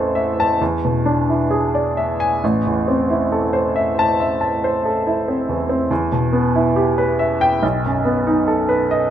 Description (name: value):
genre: classical, romantic character piece for solo piano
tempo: 65-71 BPM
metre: 4/4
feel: rubato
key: A minor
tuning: A4 = 440 Hz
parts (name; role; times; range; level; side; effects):
- clear upright piano; solo; 0.0-9.1 s; A1 to A5; -16 LUFS; equal; none
room: light reverb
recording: close, detailed microphones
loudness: -16 LUFS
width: side -10 dB against mid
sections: 0.0-9.1 A section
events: none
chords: 0.0 Am; 0.6 E7; 2.4 Am; 5.9 Em; 7.6 B7